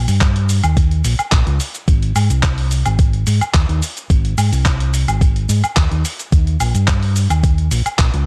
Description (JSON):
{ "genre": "nu-disco, nu disco", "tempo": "108 BPM", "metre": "4/4", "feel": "straight", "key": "Ab major", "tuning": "A4 = 440 Hz", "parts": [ { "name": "fingered electric bass", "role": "bass", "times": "0.0-8.2 s", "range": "Ab1 to Ab2", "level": "-18 LUFS", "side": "equal", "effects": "tube saturation" }, { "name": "dusty soul sampler-style drum kit", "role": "drums", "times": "0.1-8.2 s", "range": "handclaps, hi-hat, shaker, woodblock", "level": "-24 LUFS", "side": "equal", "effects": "none" }, { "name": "electronic kick drum", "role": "drums", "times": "0.2-8.1 s", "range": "none", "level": "-17 LUFS", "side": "equal", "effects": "none" } ], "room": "little or no reverb", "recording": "dry, gritty hardware recording, cassette tape", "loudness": "-16 LUFS", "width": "mono", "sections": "0.0-8.3 A section", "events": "none", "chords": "none" }